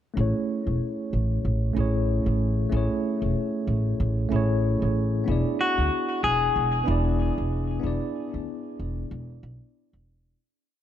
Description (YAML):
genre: sunset chillout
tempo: 94 BPM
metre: 4/4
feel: swing 57% on 16ths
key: A major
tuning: A4 = 440 Hz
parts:
  - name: bell-like tine electric piano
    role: accompaniment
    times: 0.1-10.4 s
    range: A3 to D5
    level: -28 LUFS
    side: moving between left 3 dB and right 3 dB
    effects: auto-pan, low-pass filter, tape echo
  - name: upright bass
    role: bass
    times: 0.2-10.3 s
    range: E1 to D2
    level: -25 LUFS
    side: equal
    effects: none
  - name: semi-hollow electric guitar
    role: melody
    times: 5.6-9.7 s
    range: F#4 to G#4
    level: -25 LUFS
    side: left 3 dB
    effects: vintage 12-bit sampler grit, tape echo
room: light reverb, small room ambience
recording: echo-heavy mix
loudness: -23 LUFS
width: side -10 dB against mid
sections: 0.2-10.4 groove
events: filter sweep on tine electric piano 0.2-10.4; fade-out 7.0-10.4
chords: 0.2 Amaj7; 5.3 E7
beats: | 0.17 0.81 1.45 2.09 | 2.73 3.37 4.00 4.64 | 5.28 5.92 6.56 7.20 | 7.83 8.47 9.11 9.75